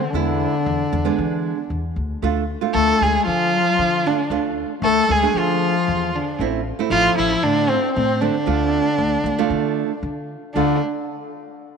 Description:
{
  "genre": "klezmer",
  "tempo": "115 BPM",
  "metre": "4/4",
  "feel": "straight",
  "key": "D dorian sharp4",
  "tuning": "A4 = 440 Hz",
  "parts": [
    { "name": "dark violin", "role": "melody", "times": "0.0-10.8 s", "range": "C4 to A4", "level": "-20 LUFS", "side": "right 2 dB", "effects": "none" },
    { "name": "mellow clarinet", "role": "second line", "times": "0.0-10.8 s", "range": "D3 to C4", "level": "-24 LUFS", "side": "left 11 dB", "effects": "none" },
    { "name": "nylon-string guitar", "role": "accompaniment", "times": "0.1-10.8 s", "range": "G#3 to G#4", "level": "-24 LUFS", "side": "right 11 dB", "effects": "none" },
    { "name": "upright bass", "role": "bass", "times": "0.1-10.8 s", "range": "A1 to E3", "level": "-26 LUFS", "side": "left 1 dB", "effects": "none" }
  ],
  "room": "moderate plate reverb, RT60 3.0 s",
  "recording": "1960s-style stereo with parts hard left and right",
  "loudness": "-17 LUFS",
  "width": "side -6 dB against mid",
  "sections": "0.0-10.6 A section; 10.6-11.8 B section",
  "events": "none",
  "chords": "0.0 E; 2.2 Dm; 6.4 Am; 8.5 Dm",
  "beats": "| 0.13 0.65 1.18 1.71 | 2.23 2.75 3.28 3.80 | 4.32 4.84 5.36 5.88 | 6.40 6.92 7.44 7.96 | 8.47 8.99 9.51 10.03 | 10.55"
}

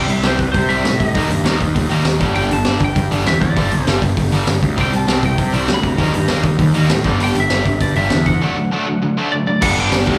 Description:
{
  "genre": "punk rock",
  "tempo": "198 BPM",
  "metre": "4/4",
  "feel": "straight",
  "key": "unclear",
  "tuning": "A4 = 435 Hz",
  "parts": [
    { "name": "lightly driven lead guitar", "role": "melody", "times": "0.0-10.2 s", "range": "B4 to B5", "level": "-25 LUFS", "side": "equal", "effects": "slapback echo, tape echo" },
    { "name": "cranked stack guitar", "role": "riff", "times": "0.0-10.2 s", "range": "G2 to Eb4", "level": "-23 LUFS", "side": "equal", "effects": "overdrive, slapback echo" },
    { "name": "distorted electric guitar", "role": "riff", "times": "0.0-10.2 s", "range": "G2 to G4", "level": "-25 LUFS", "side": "equal", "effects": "overdrive, slapback echo" },
    { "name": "fuzz picked electric bass", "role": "bass", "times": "0.0-10.2 s", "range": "G1 to C3", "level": "-21 LUFS", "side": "equal", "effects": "overdrive" },
    { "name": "raw garage drum kit", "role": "drums", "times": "0.1-10.1 s", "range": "crash cymbal, hi-hat, kick drum, snare drum", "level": "-22 LUFS", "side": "equal", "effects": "none" },
    { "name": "tight distorted guitar", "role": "riff", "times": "9.6-10.2 s", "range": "G2 to G3", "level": "-29 LUFS", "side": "equal", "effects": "none" }
  ],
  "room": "little or no reverb",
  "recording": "live gig heard through the venue's PA, club reverb",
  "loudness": "-16 LUFS",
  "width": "mono",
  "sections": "0.0-9.6 A section",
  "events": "break 8.4-9.6",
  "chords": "0.0 C; 1.1 Eb; 2.2 G5; 4.8 C5; 6.0 Eb; 7.0 G5; 8.4 D; 9.6 G",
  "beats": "0.24 0.55 0.85 | 1.15 1.45 1.75 2.06 | 2.36 2.66 2.96 3.26 | 3.57 3.87 4.17 4.47 | 4.78 5.08 5.38 5.68 | 5.99 6.29 6.59 6.90 | 7.20 7.50 7.81 8.11 | 8.41 8.72 9.02 9.32 | 9.62 9.93"
}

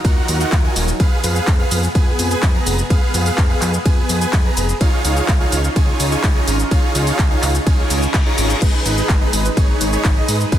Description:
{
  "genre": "EDM, festival progressive house",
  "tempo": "126 BPM",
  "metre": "4/4",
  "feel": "straight",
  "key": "unclear",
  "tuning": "A4 = 444 Hz",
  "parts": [
    { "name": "lush unison pad", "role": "sustained chords", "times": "0.0-10.6 s", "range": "Gb3 to Cb5", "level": "-25 LUFS", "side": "equal", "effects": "chorus, phaser, sidechain pumping" },
    { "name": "supersaw chords", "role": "riff", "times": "0.0-10.6 s", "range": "Eb4 to Bb5", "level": "-22 LUFS", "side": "right 2 dB", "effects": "sidechain pumping, tape echo" },
    { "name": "fat analog bass", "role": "bass", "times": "0.0-10.6 s", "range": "Eb1 to Ab2", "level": "-21 LUFS", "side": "equal", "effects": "sidechain pumping" },
    { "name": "electronic kick drum", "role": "drums", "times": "0.0-10.6 s", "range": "none", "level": "-16 LUFS", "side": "equal", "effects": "overdrive" },
    { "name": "house drum kit", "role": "drums", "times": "0.0-10.6 s", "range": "crash cymbal, handclaps, hi-hat, ride cymbal, shaker", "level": "-23 LUFS", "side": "equal", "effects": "overdrive" },
    { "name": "reverse cymbal", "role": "sound effects", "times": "7.8-8.6 s", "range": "none", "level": "-29 LUFS", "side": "left 4 dB", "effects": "none" }
  ],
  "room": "digital ambience",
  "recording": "dense, heavily limited modern master",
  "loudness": "-14 LUFS",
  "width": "side -11 dB against mid",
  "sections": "0.0-10.6 A section",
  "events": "reverse cymbal 7.8-8.6",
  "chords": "0.0 Ebmadd9; 1.0 Fdim; 4.8 Dbadd9; 8.6 Abm",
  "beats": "0.05 0.52 | 1.00 1.48 1.95 2.43 | 2.90 3.38 3.86 4.33 | 4.81 5.29 5.76 6.24 | 6.71 7.19 7.67 8.14 | 8.62 9.09 9.57 10.05 | 10.52"
}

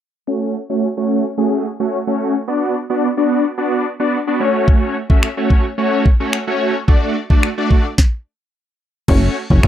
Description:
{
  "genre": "dance-pop",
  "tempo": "109 BPM",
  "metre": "4/4",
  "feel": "straight",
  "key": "F# minor",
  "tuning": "A4 = 440 Hz",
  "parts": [
    { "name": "big bright polysynth", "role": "accompaniment", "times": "0.3-9.7 s", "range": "A3 to E5", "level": "-17 LUFS", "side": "equal", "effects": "chorus, sidechain pumping, low-pass filter" },
    { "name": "smooth R&B drum kit", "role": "drums", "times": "4.7-9.7 s", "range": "crash cymbal, finger snaps, kick drum, snare drum", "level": "-13 LUFS", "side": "equal", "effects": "none" },
    { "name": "plucky analog bass", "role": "bass", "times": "9.1-9.7 s", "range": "F#1", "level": "-12 LUFS", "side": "equal", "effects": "sidechain pumping" }
  ],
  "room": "light reverb",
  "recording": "dry, close 1970s-style studio recording",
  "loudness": "-14 LUFS",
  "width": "side -11 dB against mid",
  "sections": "0.3-9.1 A section",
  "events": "filter sweep on analog polysynth 0.3-9.1; stop 8.0-9.1",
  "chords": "0.3 F#m; 2.5 Bm; 4.4 F#m; 6.9 D; 9.1 F#m",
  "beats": "| 0.28 0.83 1.38 1.93 | 2.48 3.03 3.58 4.13 | 4.68 5.23 5.78 6.33 | 6.88 7.43 7.98 8.53 | 9.08 9.63"
}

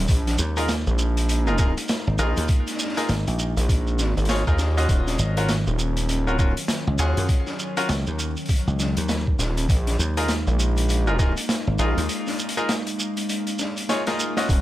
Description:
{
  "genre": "glitch hop",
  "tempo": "100 BPM",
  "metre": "4/4",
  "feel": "swing 61% on 16ths",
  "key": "unclear",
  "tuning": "A4 = 439 Hz",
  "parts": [
    { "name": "warbly tape-like pad", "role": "sustained chords", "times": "0.0-14.6 s", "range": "Eb3 to Eb4", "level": "-31 LUFS", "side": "equal", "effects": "chorus, built-in reverb, sidechain pumping" },
    { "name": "gritty driven synth bass", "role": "bass", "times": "0.0-14.6 s", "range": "Eb1 to Eb2", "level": "-22 LUFS", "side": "equal", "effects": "none" },
    { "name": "electronic kick drum", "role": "drums", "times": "0.1-14.6 s", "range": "none", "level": "-20 LUFS", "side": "equal", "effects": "overdrive" },
    { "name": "raw garage drum kit", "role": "drums", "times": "0.1-14.6 s", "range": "hi-hat, snare drum", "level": "-29 LUFS", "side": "left 1 dB", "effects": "none" },
    { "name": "shekere", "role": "percussion", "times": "0.1-14.6 s", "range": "none", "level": "-32 LUFS", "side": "right 3 dB", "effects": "none" },
    { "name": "dry thumbed slap bass", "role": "bass", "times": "0.4-12.1 s", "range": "Ab1 to Gb2", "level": "-24 LUFS", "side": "equal", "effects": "none" },
    { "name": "bright grand piano", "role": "stabs", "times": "0.6-14.6 s", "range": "Db4 to Eb5", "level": "-28 LUFS", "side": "left 1 dB", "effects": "sidechain pumping, dub echo" }
  ],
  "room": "little or no reverb",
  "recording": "none",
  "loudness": "-20 LUFS",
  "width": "side -15 dB against mid",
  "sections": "0.0-14.6 A section",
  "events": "break 12.1-14.5; drum fill 13.9-14.5",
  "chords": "0.1 Bb7sus4; 4.9 Ebm7; 9.7 Bb7sus4",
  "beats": "| 0.09 0.69 1.29 1.89 | 2.49 3.09 3.69 4.29 | 4.89 5.49 6.09 6.69 | 7.29 7.89 8.49 9.09 | 9.69 10.29 10.89 11.49 | 12.09 12.69 13.29 13.89 | 14.49"
}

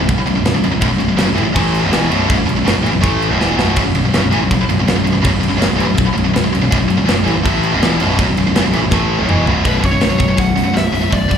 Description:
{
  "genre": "heavy metal",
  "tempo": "163 BPM",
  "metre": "4/4",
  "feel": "straight",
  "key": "unclear",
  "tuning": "A4 = 439 Hz",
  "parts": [
    { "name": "heavy high-gain guitar", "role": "riff", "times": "0.0-11.4 s", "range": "B1 to A3", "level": "-15 LUFS", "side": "equal", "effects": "distortion" },
    { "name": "overdriven picked electric bass", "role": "bass", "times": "0.0-11.4 s", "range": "B0 to A1", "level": "-18 LUFS", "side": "equal", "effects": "none" },
    { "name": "tight metal drum kit", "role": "drums", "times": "0.1-11.4 s", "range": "crash cymbal, hi-hat, kick drum, snare drum, toms", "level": "-18 LUFS", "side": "equal", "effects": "none" },
    { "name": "high-gain lead guitar", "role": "melody", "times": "9.7-11.4 s", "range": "B4 to F#5", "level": "-20 LUFS", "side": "left 1 dB", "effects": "distortion" }
  ],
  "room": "small room ambience",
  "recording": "live gig heard through the venue's PA, club reverb",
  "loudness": "-12 LUFS",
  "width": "side -8 dB against mid",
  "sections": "0.0-9.7 A section; 9.7-11.4 B section",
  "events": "drum fill 3.4-3.8, 8.9-9.7",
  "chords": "0.0 B5",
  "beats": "0.08 0.45 | 0.82 1.19 1.55 1.92 | 2.29 2.66 3.03 3.40 | 3.76 4.13 4.50 4.87 | 5.24 5.61 5.97 6.34 | 6.71 7.08 7.45 7.81 | 8.18 8.55 8.92 9.29 | 9.65 10.02 10.39 10.76 | 11.13"
}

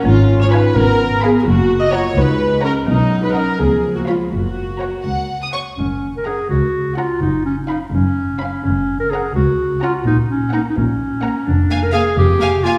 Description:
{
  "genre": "cinematic, playful, whimsical film cue",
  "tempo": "84 BPM (dotted quarters)",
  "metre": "6/8",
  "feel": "straight",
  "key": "F# major",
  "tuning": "A4 = 440 Hz",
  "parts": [
    { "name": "dark chamber viola section", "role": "accompaniment", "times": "0.0-12.7 s", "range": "A#3 to D#5", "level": "-22 LUFS", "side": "equal", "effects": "none" },
    { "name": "mellow French horn section", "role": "sustained chords", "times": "0.0-5.4 s", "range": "E#3 to C#4", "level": "-25 LUFS", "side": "equal", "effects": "none" },
    { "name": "folk marimba with medium mallets", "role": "melody", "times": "0.1-5.0 s", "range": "F#3 to F#4", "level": "-23 LUFS", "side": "equal", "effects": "none" },
    { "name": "warm chamber cello section", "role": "bass", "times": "0.1-12.7 s", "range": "C#2 to C#3", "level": "-24 LUFS", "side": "equal", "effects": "none" },
    { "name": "warm chamber double bass section", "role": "bass", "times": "0.1-12.7 s", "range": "F1 to C#2", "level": "-23 LUFS", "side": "equal", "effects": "none" },
    { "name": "warm chamber violin section", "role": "melody", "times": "0.5-12.7 s", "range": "F#5 to D#6", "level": "-31 LUFS", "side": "equal", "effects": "none" },
    { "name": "warm studio violin section", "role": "second line", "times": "0.5-12.7 s", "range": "C#5 to Ab5", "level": "-30 LUFS", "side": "equal", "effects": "none" },
    { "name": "warm clarinet", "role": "second line", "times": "5.8-12.8 s", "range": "C#4 to A#4", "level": "-21 LUFS", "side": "equal", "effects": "none" }
  ],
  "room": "wet scoring stage reverb, RT60 1.9 s",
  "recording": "heard from further back in the room",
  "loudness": "-17 LUFS",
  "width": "mono",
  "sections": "0.0-5.8 A section; 5.8-12.8 A section",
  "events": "none",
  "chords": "0.1 Fdim/Ab; 1.5 F#; 2.9 Bmaj7; 3.6 C#7; 4.3 F#; 10.1 F#/A#; 11.5 Bb5/F",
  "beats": "| 0.05 0.76 | 1.46 2.16 | 2.88 3.59 | 4.32 5.05 | 5.79 6.50 | 7.21 7.93 | 8.64 9.36 | 10.06 10.77 | 11.47 12.17"
}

